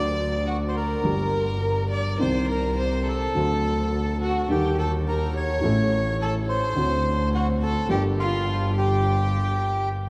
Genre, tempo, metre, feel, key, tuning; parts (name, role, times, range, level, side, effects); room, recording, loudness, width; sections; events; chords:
tango; 104 BPM; 4/4; rubato; G minor; A4 = 438 Hz
bandoneon; melody; 0.0-9.9 s; F4 to D5; -30 LUFS; equal
warm violin; second line; 0.0-9.9 s; F4 to D5; -32 LUFS; equal
warm upright piano; accompaniment; 0.0-10.1 s; G1 to A4; -30 LUFS; equal
clear double bass; bass; 0.0-10.1 s; G1 to Eb2; -28 LUFS; equal
wet cathedral reverb, RT60 5.6 s; in a vast, echoing space; -24 LUFS; mono
0.0-10.1 A section
0.0 D; 1.0 Gm; 2.2 Cm; 3.4 D; 4.5 Eb; 5.6 A; 6.8 D7; 7.9 Gm